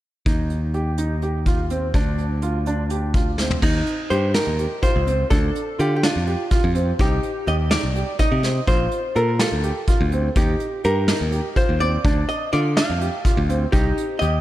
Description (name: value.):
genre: progressive instrumental, band music in an uneven meter.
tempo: 250 BPM (eighths).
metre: 7/8.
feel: straight.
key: Eb lydian.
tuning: A4 = 440 Hz.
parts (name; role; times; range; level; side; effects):
warm grand piano; arpeggios; 0.3-14.4 s; C4 to A4; -27 LUFS; right 2 dB; slapback echo, tape echo.
modern bright picked electric bass; bass; 0.3-14.4 s; Bb1 to D3; -22 LUFS; equal; none.
vintage brush drum kit; drums; 0.3-14.3 s; crash cymbal, hi-hat, kick drum, snare drum, toms; -22 LUFS; equal; none.
hollow-body jazz guitar; melody; 3.6-14.4 s; Eb4 to F5; -24 LUFS; equal; none.
room: light reverb, small room ambience.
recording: none.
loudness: -18 LUFS.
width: side -14 dB against mid.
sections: 0.3-3.6 A section; 3.6-14.4 B section.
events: drum fill 3.4.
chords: 0.3 Eb; 1.9 Dm; 3.6 Eb6; 5.3 Dm; 7.0 Cmadd9; 8.7 Bbmaj7; 10.4 Eb; 12.0 Dm; 13.7 Cm.